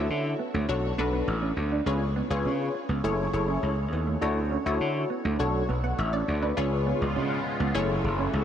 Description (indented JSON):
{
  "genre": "funk",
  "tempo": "102 BPM",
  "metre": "4/4",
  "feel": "straight",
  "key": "unclear",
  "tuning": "A4 = 440 Hz",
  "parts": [
    { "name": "funky polysynth comp", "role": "accompaniment", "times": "0.0-8.4 s", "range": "D4 to F#5", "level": "-29 LUFS", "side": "left 2 dB", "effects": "chorus" },
    { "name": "gritty slap bass", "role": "bass", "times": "0.0-8.4 s", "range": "F#1 to D3", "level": "-28 LUFS", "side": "equal", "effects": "overdrive" },
    { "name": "mellow electric guitar", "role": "riff", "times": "0.1-8.4 s", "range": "A3 to D4", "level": "-34 LUFS", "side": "right 5 dB", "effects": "lush chorus" },
    { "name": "lush unison pad", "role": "sustained chords", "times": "6.6-8.4 s", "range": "C#3 to F#4", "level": "-31 LUFS", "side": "equal", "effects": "chorus, phaser" }
  ],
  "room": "moderate huge ambient reverb, RT60 7.1 s",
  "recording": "dreamy mix soaked in reverb",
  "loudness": "-25 LUFS",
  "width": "side -9 dB against mid",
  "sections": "0.0-6.6 A section; 6.6-8.4 B section",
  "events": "none",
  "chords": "0.0 D; 0.7 Bm7; 1.9 C#7; 3.0 F#m7; 4.2 Dmaj7; 5.4 Bm7; 6.6 C#7; 7.7 F#m7",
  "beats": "0.10 0.69 1.28 | 1.86 2.45 3.04 3.63 | 4.22 4.80 5.39 5.98 | 6.57 7.16 7.75 8.34"
}